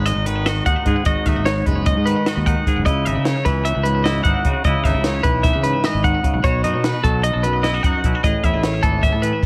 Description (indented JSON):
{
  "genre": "math rock and midwest emo",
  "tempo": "301 BPM (eighths)",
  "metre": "9/8",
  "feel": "straight",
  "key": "unclear",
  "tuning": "A4 = 435 Hz",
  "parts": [
    { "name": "twangy electric guitar", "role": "accompaniment", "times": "0.0-9.4 s", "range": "F#2 to G#4", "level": "-26 LUFS", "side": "equal", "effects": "lush chorus" },
    { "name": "twelve-string electric guitar", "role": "arpeggios", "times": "0.0-9.4 s", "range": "A4 to F#5", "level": "-24 LUFS", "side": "equal", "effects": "digital delay" },
    { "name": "fuzz fingered electric bass", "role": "bass", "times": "0.0-9.3 s", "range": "F#1 to C#3", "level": "-24 LUFS", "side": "equal", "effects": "overdrive" },
    { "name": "compact cocktail drum kit", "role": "drums", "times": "0.1-9.5 s", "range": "crash cymbal, hi-hat, kick drum, snare drum", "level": "-23 LUFS", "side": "equal", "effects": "none" }
  ],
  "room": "light reverb",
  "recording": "none",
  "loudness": "-18 LUFS",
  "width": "mono",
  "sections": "0.0-9.5 A section",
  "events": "none",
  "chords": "0.0 G#m7; 2.9 C#m9; 6.4 B7; 8.2 Amaj7"
}